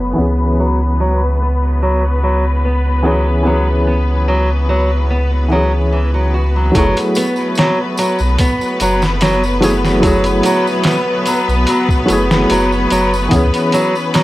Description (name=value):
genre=trip hop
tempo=73 BPM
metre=4/4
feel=straight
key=F# minor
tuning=A4 = 442 Hz
part: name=felt-muted upright piano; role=accompaniment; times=0.0-14.2 s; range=E3 to G#4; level=-18 LUFS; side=equal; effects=tremolo
part: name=rich studio string section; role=sustained chords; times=0.0-14.2 s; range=B3 to B4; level=-20 LUFS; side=left 2 dB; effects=low-pass filter
part: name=warm sub bass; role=bass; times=0.0-13.5 s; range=F#1 to C#2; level=-16 LUFS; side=equal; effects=none
part: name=nylon-string guitar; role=arpeggios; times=0.2-14.2 s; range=E3 to F#4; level=-19 LUFS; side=right 1 dB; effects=digital delay
part: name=trip hop sampler-style drum kit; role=drums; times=6.7-14.2 s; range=hi-hat, kick drum, snare drum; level=-17 LUFS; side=equal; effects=none
part: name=tambourine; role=percussion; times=6.7-14.2 s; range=none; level=-30 LUFS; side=right 2 dB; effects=none
room=light reverb, studio reverb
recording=vinyl crackle, low-pass filter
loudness=-12 LUFS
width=side -17 dB against mid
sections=0.0-6.7 A section; 6.7-14.2 B section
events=filter sweep on string section 0.0-6.7; filter sweep on nylon-string guitar 0.0-6.7; filter sweep 0.0-6.7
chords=0.2 C#m7; 6.7 F#m9; 13.3 C#m7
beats=| 0.17 1.00 1.82 2.64 | 3.46 4.28 5.11 5.93 | 6.75 7.57 8.39 9.21 | 10.04 10.86 11.68 12.50 | 13.32 14.15